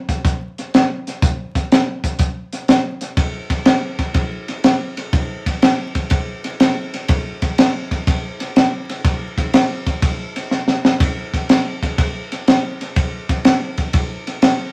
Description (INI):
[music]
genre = blues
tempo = 123 BPM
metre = 4/4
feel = swing 68% on 8ths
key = none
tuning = none
[part]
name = compact cocktail drum kit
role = drums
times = 0.1-14.6 s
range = hi-hat, kick drum, ride cymbal, snare drum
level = -18 LUFS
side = equal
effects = none
[sound]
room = moderate studio reverb, RT60 0.6 s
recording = vinyl crackle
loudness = -18 LUFS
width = mono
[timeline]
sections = 0.0-3.2 A section; 3.2-14.7 A section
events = drum fill 10.5-11.0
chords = none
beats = 0.24 0.73 | 1.22 1.71 2.20 2.69 | 3.18 3.67 4.15 4.64 | 5.13 5.62 6.11 6.60 | 7.09 7.58 8.07 8.56 | 9.05 9.54 10.03 10.52 | 11.01 11.50 11.99 12.48 | 12.97 13.46 13.95 14.44